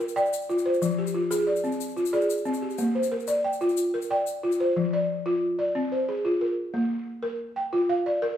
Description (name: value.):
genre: west african traditional, West African string and xylophone music.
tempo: 122 BPM (dotted quarters).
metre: 12/8.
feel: straight.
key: F dorian.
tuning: A4 = 440 Hz.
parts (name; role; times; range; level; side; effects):
balafon; arpeggios; 0.0-8.4 s; F3 to G5; -24 LUFS; equal; none.
egg shaker; percussion; 0.0-4.6 s; none; -40 LUFS; left 10 dB; none.
room: wet recital hall reverb, RT60 1.3 s.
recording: small room ambience.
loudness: -24 LUFS.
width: side -10 dB against mid.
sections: 0.0-4.8 A section; 4.8-8.4 B section.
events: none.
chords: 0.0 Bb; 0.8 Fm; 2.8 Bb; 4.8 Fm; 6.7 Bb.